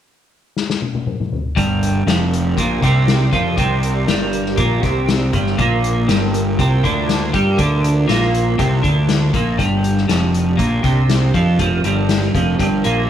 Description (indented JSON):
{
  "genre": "psychedelic rock",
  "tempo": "120 BPM",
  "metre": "4/4",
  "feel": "straight",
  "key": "G minor",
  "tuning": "A4 = 439 Hz",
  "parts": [
    { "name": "soft-mallet drum kit", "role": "drums", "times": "0.6-13.0 s", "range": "hi-hat, kick drum, snare drum, toms", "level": "-21 LUFS", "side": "left 4 dB", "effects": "none" },
    { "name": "ensemble organ-string", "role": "sustained chords", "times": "1.6-13.1 s", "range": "Bb3 to Bb4", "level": "-27 LUFS", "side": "right 7 dB", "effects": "ensemble chorus" },
    { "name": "twelve-string electric guitar", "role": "riff", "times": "1.6-13.1 s", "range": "F2 to G3", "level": "-16 LUFS", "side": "equal", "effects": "flanger, double-tracked left and right" },
    { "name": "fuzz fingered electric bass", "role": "bass", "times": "1.6-13.1 s", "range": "F1 to G2", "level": "-21 LUFS", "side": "equal", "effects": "overdrive" }
  ],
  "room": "moderate echo chamber reverb, RT60 1.4 s, small room ambience",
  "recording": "1960s-style stereo",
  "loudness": "-14 LUFS",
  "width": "side -10 dB against mid",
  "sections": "0.0-1.6 A section; 1.6-13.1 B section",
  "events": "drum fill 0.6-1.6",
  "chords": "0.0 N.C.; 1.6 Gm; 5.6 Bb5; 9.6 Gm",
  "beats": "0.05 0.56 1.06 | 1.56 2.06 2.57 3.07 | 3.57 4.08 4.58 5.08 | 5.58 6.08 6.58 7.08 | 7.59 8.09 8.59 9.09 | 9.59 10.09 10.59 11.09 | 11.60 12.10 12.60"
}